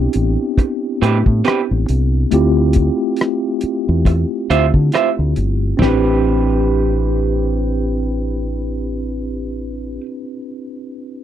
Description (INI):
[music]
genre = R&B, neo-soul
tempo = 69 BPM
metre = 4/4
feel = swing 59% on 16ths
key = A minor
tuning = A4 = 440 Hz
[part]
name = mellow tine electric piano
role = accompaniment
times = 0.0-11.2 s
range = A3 to B4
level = -20 LUFS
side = left 1 dB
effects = medium stereo tremolo
[part]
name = deep dub fingered electric bass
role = bass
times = 0.0-10.0 s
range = G1 to D3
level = -17 LUFS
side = equal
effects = none
[part]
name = cloth-damped thuddy drum kit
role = drums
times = 0.1-6.0 s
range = hi-hat, kick drum, rim click, snare drum, toms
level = -16 LUFS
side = equal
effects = none
[part]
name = electric guitar through a small old amp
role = second line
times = 0.6-10.1 s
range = C4 to E5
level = -20 LUFS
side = right 8 dB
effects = none
[sound]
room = little or no reverb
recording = dry, close 1970s-style studio recording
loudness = -14 LUFS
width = side -10 dB against mid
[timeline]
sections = 0.0-5.8 A section; 5.8-9.3 B section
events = none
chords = 0.0 Am9; 2.3 Dm9; 5.8 Am9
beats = 0.57 1.44 | 2.31 3.18 4.05 4.92 | 5.79 6.66 7.53 8.40